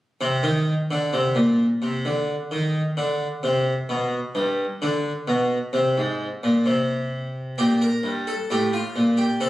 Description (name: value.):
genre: classical, baroque-style 3-part fugue for harpsichord.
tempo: 65 BPM.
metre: 4/4.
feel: straight.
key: unclear.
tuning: A4 = 440 Hz.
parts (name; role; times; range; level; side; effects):
harpsichord; solo; 0.2-9.5 s; G2 to Bb4; -20 LUFS; equal; none.
room: wet stone room reverb, RT60 1.4 s.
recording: recorded on a phone in the room, club reverb.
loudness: -20 LUFS.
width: side -15 dB against mid.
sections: 0.2-9.5 A section.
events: none.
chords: 0.2 N.C.; 7.6 Gm.